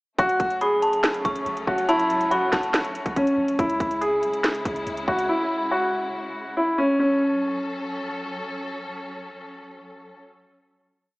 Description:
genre	hip hop, trap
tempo	141 BPM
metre	4/4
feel	half-time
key	F# minor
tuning	A4 = 440 Hz
part	warm concert grand piano	melody	0.2-8.2 s	C#4 to G#4	-22 LUFS	equal	none
part	warm symphonic string section	sustained chords	0.2-10.2 s	C#3 to A4	-33 LUFS	left 1 dB	none
part	clean 808-style bass	bass	0.2-5.3 s	F#1 to C#2	-42 LUFS	equal	none
part	trap drum kit	drums	0.2-5.3 s	hi-hat, kick drum, snare drum	-25 LUFS	equal	vintage 12-bit sampler grit
part	dark detuned synth bell	second line	0.6-3.1 s	A5 to C#6	-26 LUFS	equal	chorus, tape echo
room	moderate recital hall reverb, RT60 1.6 s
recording	small speaker sound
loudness	-21 LUFS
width	side -23 dB against mid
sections	0.2-7.0 hook; 7.0-10.4 final chord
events	none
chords	0.2 F#m; 3.6 C#m; 7.0 F#m

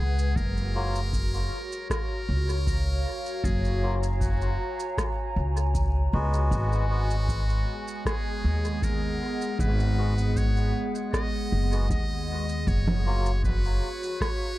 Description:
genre	ambient dub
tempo	78 BPM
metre	4/4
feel	straight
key	unclear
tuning	A4 = 440 Hz
part	trumpet with metal mute	melody	0.0-14.6 s	F#4 to D#5	-36 LUFS	equal	dub echo
part	warbly tape-like pad	sustained chords	0.0-14.6 s	G#3 to A#5	-33 LUFS	equal	chorus, built-in reverb
part	upright bass	bass	0.0-13.8 s	F#1 to D#2	-25 LUFS	equal	none
part	electronic shaker, rim click and congas	drums	0.2-14.4 s	none	-35 LUFS	right 1 dB	dub echo
part	electronic kick drum	drums	0.4-14.4 s	none	-30 LUFS	equal	none
part	melodica	stabs	0.8-13.3 s	F#3 to F#4	-36 LUFS	left 2 dB	dub echo
room	studio reverb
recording	echo-heavy mix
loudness	-24 LUFS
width	side -17 dB against mid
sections	0.0-14.6 A section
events	none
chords	0.4 F#maj7; 6.5 G#m7; 12.7 F#maj7

